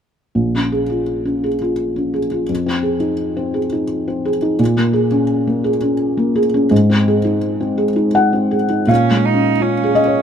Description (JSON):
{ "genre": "neoclassical piano and strings", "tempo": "85 BPM", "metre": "3/4", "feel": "rubato", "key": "Bb minor", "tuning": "A4 = 441 Hz", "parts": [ { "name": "felt-muted upright piano", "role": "accompaniment", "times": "0.3-10.2 s", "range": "Bb1 to Gb5", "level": "-14 LUFS", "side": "equal", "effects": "none" }, { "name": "rich cello", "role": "second line", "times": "8.9-10.2 s", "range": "Db4 to Eb4", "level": "-18 LUFS", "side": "right 10 dB", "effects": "none" } ], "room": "light reverb", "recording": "minimal, uncompressed stereo recording", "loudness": "-14 LUFS", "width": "side -8 dB against mid", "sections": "0.4-8.9 A section; 8.9-10.2 B section", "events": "none", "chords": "0.4 Bbm7; 2.5 Fm7; 4.6 Bbm7; 6.7 Ab; 8.9 Bbm7" }